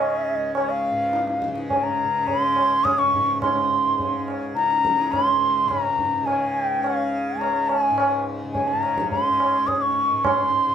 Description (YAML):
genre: indian classical, Hindustani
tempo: 105 BPM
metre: 3/4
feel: straight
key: Db raga yaman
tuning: A4 = 441 Hz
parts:
  - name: breathy mellow bansuri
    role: melody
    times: 0.0-10.7 s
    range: Db5 to Eb6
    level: -20 LUFS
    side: equal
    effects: none
  - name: tanpura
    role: drone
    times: 0.0-10.7 s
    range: Db2 to Db3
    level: -29 LUFS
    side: left 1 dB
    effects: none
  - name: tabla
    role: percussion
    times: 0.6-10.5 s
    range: none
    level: -28 LUFS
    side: right 2 dB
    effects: none
room: light reverb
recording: none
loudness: -19 LUFS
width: side -8 dB against mid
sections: 0.0-3.4 A section; 3.4-10.7 B section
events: none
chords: none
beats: 0.54 1.12 | 1.70 2.27 2.85 | 3.42 4.00 4.57 | 5.14 5.71 6.28 | 6.85 7.42 7.98 | 8.55 9.11 9.68 | 10.24